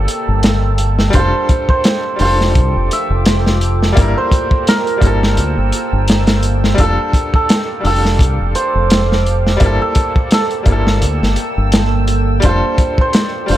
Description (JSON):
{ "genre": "trip hop", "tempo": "85 BPM", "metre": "4/4", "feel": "swing 56% on 16ths", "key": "G dorian", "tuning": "A4 = 441 Hz", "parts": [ { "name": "cimbalom", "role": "melody", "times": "0.0-13.6 s", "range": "A4 to E5", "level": "-19 LUFS", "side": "right 3 dB", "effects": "dub echo" }, { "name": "bright upright piano", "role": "accompaniment", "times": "0.0-13.6 s", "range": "G3 to Bb4", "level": "-22 LUFS", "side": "left 2 dB", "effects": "tremolo, vintage 12-bit sampler grit, tape echo" }, { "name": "deep dark ambient pad", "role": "sustained chords", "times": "0.0-13.6 s", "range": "Bb3 to E6", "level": "-23 LUFS", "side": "right 2 dB", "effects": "chorus, built-in reverb, vintage 12-bit sampler grit" }, { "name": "deep dub fingered electric bass", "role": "bass", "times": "0.0-13.6 s", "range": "F1 to D2", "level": "-15 LUFS", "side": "equal", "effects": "none" }, { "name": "crunchy breakbeat drum kit", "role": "drums", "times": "0.1-13.6 s", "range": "hi-hat, kick drum, snare drum", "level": "-15 LUFS", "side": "equal", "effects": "none" } ], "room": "studio ambience", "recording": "none", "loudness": "-11 LUFS", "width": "side -13 dB against mid", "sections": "0.0-13.6 A section", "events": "none", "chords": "0.0 Gm69; 1.1 F69; 4.0 Gm69; 6.8 F69; 9.6 Gm69; 12.4 F69", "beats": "0.43 | 1.14 1.84 2.55 3.26 | 3.96 4.67 5.37 6.08 | 6.79 7.49 8.20 8.90 | 9.61 10.31 11.02 11.73 | 12.43 13.14" }